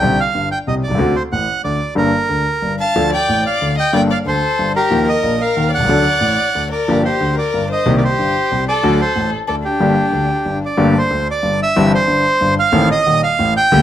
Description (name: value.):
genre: tango.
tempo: 184 BPM.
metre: 3/4.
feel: rubato.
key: G minor.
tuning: A4 = 438 Hz.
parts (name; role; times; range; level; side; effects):
bandoneon; melody; 0.0-13.8 s; G4 to A5; -17 LUFS; right 3 dB; none.
warm concert grand piano; accompaniment; 0.0-13.8 s; Eb1 to A4; -16 LUFS; left 1 dB; none.
warm violin; second line; 2.8-10.6 s; D4 to F5; -20 LUFS; left 4 dB; none.
room: moderate studio reverb, RT60 0.7 s.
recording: none.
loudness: -13 LUFS.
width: side -11 dB against mid.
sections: 0.0-10.8 A section; 10.8-13.8 B section.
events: none.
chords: 0.0 Csus2; 1.0 D7; 2.0 Gmadd9; 3.0 Dm; 3.9 Gmadd9; 4.9 Ebadd9; 5.9 D; 6.9 Gm7; 7.9 Cm7; 8.8 D; 9.8 Gm; 10.8 Gmadd9; 11.8 C/G; 12.7 Adim.